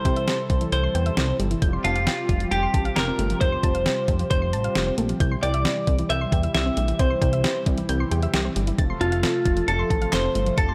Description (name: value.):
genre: synth-pop.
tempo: 134 BPM.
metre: 4/4.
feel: straight.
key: unclear.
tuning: A4 = 441 Hz.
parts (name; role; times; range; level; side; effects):
twelve-string electric guitar; melody; 0.0-10.7 s; F4 to E5; -28 LUFS; equal; tape echo.
brassy analog pad; sustained chords; 0.0-10.7 s; C3 to A4; -33 LUFS; equal; chorus.
soft round pluck; arpeggios; 0.0-10.7 s; E3 to A6; -34 LUFS; equal; chorus, tape echo.
chorused synth bass; bass; 0.1-10.7 s; F1 to E2; -28 LUFS; equal; none.
clean 12-bit digital drum machine; drums; 0.1-10.7 s; handclaps, hi-hat, kick drum, snare drum; -27 LUFS; equal; none.
room: light reverb.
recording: none.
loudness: -23 LUFS.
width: mono.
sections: 0.0-10.7 A section.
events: none.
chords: 0.0 C; 1.6 Fadd9; 5.2 C; 8.8 F.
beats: 0.28 0.72 1.17 | 1.62 2.07 2.52 2.96 | 3.41 3.86 4.31 4.75 | 5.20 5.65 6.10 6.55 | 6.99 7.44 7.89 8.34 | 8.79 9.23 9.68 10.13 | 10.58.